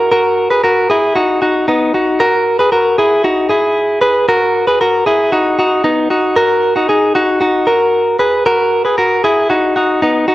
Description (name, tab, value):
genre	indie pop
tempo	115 BPM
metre	4/4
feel	straight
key	B major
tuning	A4 = 440 Hz
part	direct-recorded clean electric guitar	solo	0.0-10.3 s	B3 to B4	-10 LUFS	equal	cassette tape
room	light reverb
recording	home recording on cassette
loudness	-11 LUFS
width	side -16 dB against mid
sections	0.0-10.3 A section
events	none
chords	0.0 Bmaj7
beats	| 0.12 0.64 1.16 1.68 | 2.20 2.72 3.24 3.76 | 4.28 4.80 5.33 5.85 | 6.37 6.89 7.41 7.93 | 8.45 8.97 9.49 10.01